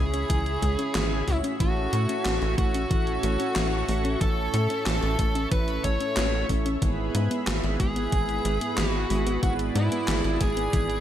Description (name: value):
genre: synthwave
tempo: 92 BPM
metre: 4/4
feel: straight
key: unclear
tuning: A4 = 440 Hz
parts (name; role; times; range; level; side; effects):
- dark smooth lead guitar; melody; 0.0-11.0 s; E4 to C#5; -31 LUFS; equal; overdrive, ping-pong delay
- airy dreamy lead; second line; 0.0-11.0 s; E5 to C#6; -35 LUFS; equal; chorus, digital delay
- chorused pulse-width pad; sustained chords; 0.0-11.0 s; G#4 to C#6; -35 LUFS; equal; sidechain pumping
- soft round pluck; arpeggios; 0.0-10.9 s; E3 to C#4; -33 LUFS; left 3 dB; chorus, digital delay
- mellow synth brass; stabs; 0.0-11.0 s; G#2 to A4; -33 LUFS; right 4 dB; chorus, digital delay
- tight sequencer bass; bass; 0.0-11.0 s; G#1 to A2; -28 LUFS; equal; tube saturation
- gated 80s digital drum machine; drums; 0.1-11.0 s; handclaps, hi-hat, snare drum; -32 LUFS; equal; gated reverb, gated reverb snare, studio reverb
- electronic kick drum; drums; 0.3-10.9 s; none; -27 LUFS; equal; studio reverb
room: light reverb, digital ambience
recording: none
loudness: -23 LUFS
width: side -11 dB against mid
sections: 0.0-11.0 A section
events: none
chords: 0.0 C#m; 1.6 A; 6.8 E/G#